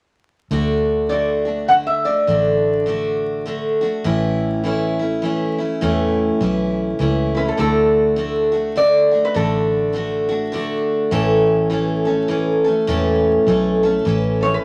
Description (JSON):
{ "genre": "honky-tonk and classic country", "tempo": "102 BPM", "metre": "3/4", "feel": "swing 61% on 8ths", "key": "D major", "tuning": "A4 = 440 Hz", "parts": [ { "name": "picked steel-string acoustic guitar", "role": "accompaniment", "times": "0.5-14.6 s", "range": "A2 to A4", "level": "-20 LUFS", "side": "equal", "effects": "none" }, { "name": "vintage muted fingered electric bass", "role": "bass", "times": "0.5-14.6 s", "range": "E1 to E2", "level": "-25 LUFS", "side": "equal", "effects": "none" }, { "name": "lap resonator guitar", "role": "melody", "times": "1.1-2.8, 7.4-10.5, 14.4-14.6 s", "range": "A4 to F#5", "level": "-20 LUFS", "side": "equal", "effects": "none" } ], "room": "moderate studio reverb, RT60 0.5 s", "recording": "vinyl crackle", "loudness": "-18 LUFS", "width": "mono", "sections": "0.5-7.6 A section; 7.6-14.6 B section", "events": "none", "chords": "0.5 D; 4.1 A; 7.6 D; 11.1 A" }